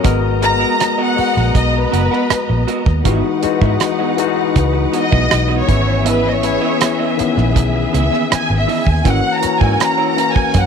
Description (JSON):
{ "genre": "lush 1970s-style soul", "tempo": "80 BPM", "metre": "4/4", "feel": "straight", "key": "G# minor", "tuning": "A4 = 439 Hz", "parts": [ { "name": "warm studio string section", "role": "second line", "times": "0.0-10.7 s", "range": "B3 to A#5", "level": "-22 LUFS", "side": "right 1 dB", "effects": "none" }, { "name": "barky tine electric piano", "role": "accompaniment", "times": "0.0-10.7 s", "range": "D#3 to B4", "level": "-19 LUFS", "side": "left 13 dB", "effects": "none" }, { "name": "electric guitar through a small old amp", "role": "riff", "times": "0.0-10.6 s", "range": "B3 to F#5", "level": "-25 LUFS", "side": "right 13 dB", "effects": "none" }, { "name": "damped 70s drum kit", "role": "drums", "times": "0.0-10.7 s", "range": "hi-hat, kick drum, rim click", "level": "-18 LUFS", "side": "right 3 dB", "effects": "none" }, { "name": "vintage muted fingered electric bass", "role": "bass", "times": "0.1-10.7 s", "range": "F#1 to G#2", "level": "-17 LUFS", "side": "right 1 dB", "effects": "none" }, { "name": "warm studio violin section", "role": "melody", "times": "0.4-10.7 s", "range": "B4 to A#5", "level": "-18 LUFS", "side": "right 1 dB", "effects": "none" } ], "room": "light reverb, small room reverb", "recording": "1960s-style stereo with parts hard left and right", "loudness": "-13 LUFS", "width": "side -6 dB against mid", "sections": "0.0-10.7 A section", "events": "violin section solo 0.0-10.7", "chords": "0.0 G#m9; 3.0 Emaj9/G#; 5.7 C#m9/G#; 9.0 F#7/G#", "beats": "| 0.05 0.80 1.55 2.30 | 3.05 3.80 4.55 5.30 | 6.05 6.80 7.55 8.30 | 9.05 9.80 10.55" }